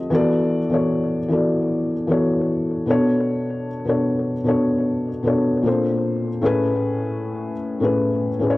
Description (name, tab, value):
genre	R&B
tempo	76 BPM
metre	4/4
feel	straight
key	unclear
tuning	A4 = 441 Hz
part	felt-muted upright piano	solo	0.0-8.6 s	A2 to Eb5	-18 LUFS	left 1 dB	cassette tape, tape echo
room	wet studio reverb, RT60 0.5 s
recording	home recording on cassette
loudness	-18 LUFS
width	side -19 dB against mid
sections	0.0-6.4 A section; 6.4-8.6 B section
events	none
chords	0.1 E9sus4; 2.9 Bm9; 5.6 A#maj9; 6.4 Amaj9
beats	| 0.12 0.91 1.69 2.48 | 3.27 4.06 4.85 5.64 | 6.43 7.22 8.01